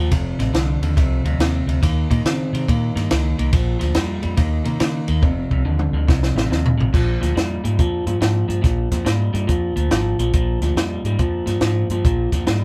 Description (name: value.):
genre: electric blues shuffle.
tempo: 141 BPM.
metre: 4/4.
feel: swing 65% on 8ths.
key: Bb mixolydian.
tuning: A4 = 440 Hz.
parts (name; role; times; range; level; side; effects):
electric guitar through a small old amp; riff; 0.0-12.6 s; F2 to C4; -25 LUFS; equal; none.
vintage muted fingered electric bass; bass; 0.0-12.6 s; F1 to Db3; -23 LUFS; equal; none.
compact cocktail drum kit; drums; 0.1-12.6 s; crash cymbal, hi-hat, kick drum, ride cymbal, snare drum, toms; -23 LUFS; equal; none.
room: moderate small room reverb, RT60 0.5 s.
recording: band playing live in one room.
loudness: -19 LUFS.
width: mono.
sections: 0.0-6.9 A section; 6.9-12.6 B section.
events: drum fill 5.2-6.9.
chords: 0.1 F7(no3); 1.8 Eb7(no3); 3.5 Bb; 4.4 Eb5; 5.2 F7; 6.9 Bb7(no3).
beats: | 0.12 0.54 0.97 1.40 | 1.82 2.25 2.68 3.10 | 3.53 3.96 4.38 4.81 | 5.23 5.66 6.09 6.51 | 6.94 7.36 7.79 8.21 | 8.64 9.07 9.49 9.92 | 10.34 10.77 11.19 11.62 | 12.04 12.47.